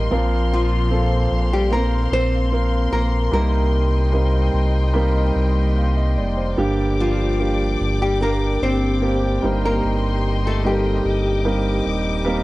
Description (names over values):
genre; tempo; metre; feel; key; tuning
pop ballad; 74 BPM; 4/4; straight; G minor; A4 = 441 Hz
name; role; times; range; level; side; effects
dark baby grand piano; accompaniment; 0.0-12.4 s; G2 to F5; -22 LUFS; right 2 dB; none
warm studio string section; sustained chords; 0.0-12.4 s; Bb3 to D6; -28 LUFS; left 3 dB; none
sub bass with octave; bass; 0.0-12.4 s; Eb1 to C2; -20 LUFS; equal; none
nylon-string guitar; melody; 0.5-11.4 s; F3 to C5; -24 LUFS; left 1 dB; cassette tape, analog delay
room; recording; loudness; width
little or no reverb; home recording on cassette; -17 LUFS; side -18 dB against mid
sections
0.0-12.4 A section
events
none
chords
0.1 Bbsus2; 3.3 Cm7; 6.6 Gm; 9.4 Eb6/G